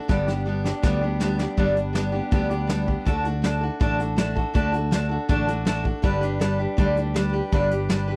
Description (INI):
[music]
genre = honky-tonk and classic country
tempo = 161 BPM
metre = 4/4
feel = straight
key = G major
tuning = A4 = 440 Hz
[part]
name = picked steel-string acoustic guitar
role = accompaniment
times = 0.0-8.2 s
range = G2 to B4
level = -27 LUFS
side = equal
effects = none
[part]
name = fingered electric bass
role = bass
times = 0.1-8.1 s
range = G1 to D2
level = -29 LUFS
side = equal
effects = none
[part]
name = soft brush drum kit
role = drums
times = 0.1-8.0 s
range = hi-hat, kick drum, snare drum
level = -27 LUFS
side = equal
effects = none
[sound]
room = little or no reverb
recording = dry, close 1970s-style studio recording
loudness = -23 LUFS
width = mono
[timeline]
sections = 0.0-1.6 A section; 1.6-8.2 B section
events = drum fill 0.1-1.6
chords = 0.1 G; 3.1 D; 6.0 G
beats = | 0.09 0.47 0.84 1.21 | 1.58 1.95 2.32 2.69 | 3.06 3.44 3.81 4.18 | 4.55 4.92 5.29 5.67 | 6.04 6.41 6.78 7.16 | 7.53 7.90